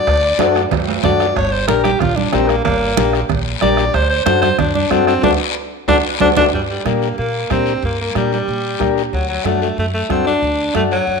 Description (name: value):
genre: latin, cumbia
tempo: 185 BPM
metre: 4/4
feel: straight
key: G harmonic minor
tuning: A4 = 440 Hz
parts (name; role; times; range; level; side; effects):
- bright alto saxophone; melody; 0.0-11.2 s; F#3 to D5; -18 LUFS; equal; none
- upright bass; bass; 0.1-11.2 s; G1 to Bb2; -22 LUFS; right 1 dB; none
- bombo; percussion; 0.1-10.9 s; none; -25 LUFS; right 1 dB; none
- congas; percussion; 0.1-11.2 s; none; -22 LUFS; right 13 dB; none
- cowbell and timbales; percussion; 0.1-6.4 s; none; -25 LUFS; right 11 dB; none
- guiro; percussion; 0.1-11.2 s; none; -28 LUFS; left 11 dB; none
- combo organ; accompaniment; 0.4-11.0 s; D4 to Bb4; -20 LUFS; left 8 dB; none
room: wet echo chamber reverb, RT60 1.4 s, small room ambience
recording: 1960s-style stereo with parts hard left and right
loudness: -14 LUFS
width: side -5 dB against mid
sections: 0.0-6.5 A section; 6.5-11.2 B section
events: alto saxophone solo 0.0-6.5; drum fill 0.1-1.4, 5.2-6.5; band accent 5.2-6.5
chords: 0.0 D; 1.4 Gm; 3.9 D; 6.5 Gm; 9.1 D